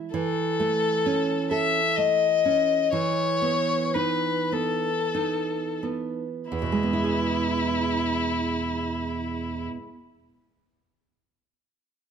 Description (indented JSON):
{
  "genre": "romantic duo for violin and classical guitar",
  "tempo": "41-66 BPM",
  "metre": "3/4",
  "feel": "rubato",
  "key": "E major",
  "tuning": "A4 = 440 Hz",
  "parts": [
    { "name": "nylon-string guitar", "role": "accompaniment", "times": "0.0-10.2 s", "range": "E2 to A4", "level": "-27 LUFS", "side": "right 5 dB", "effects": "none" },
    { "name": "rich violin", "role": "melody", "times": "0.1-9.6 s", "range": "E4 to E5", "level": "-25 LUFS", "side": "left 5 dB", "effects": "none" }
  ],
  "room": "moderate recital hall reverb, RT60 1.7 s",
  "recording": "close, detailed microphones",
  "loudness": "-23 LUFS",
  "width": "side -7 dB against mid",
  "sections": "0.1-6.5 A section; 6.5-10.4 B section",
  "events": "slowing down 0.0-6.5",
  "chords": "0.1 A/E; 2.9 B7/E; 6.5 E",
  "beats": "| 0.14 1.06 1.98 | 2.93 3.95 5.14 | 6.52 7.81 9.07"
}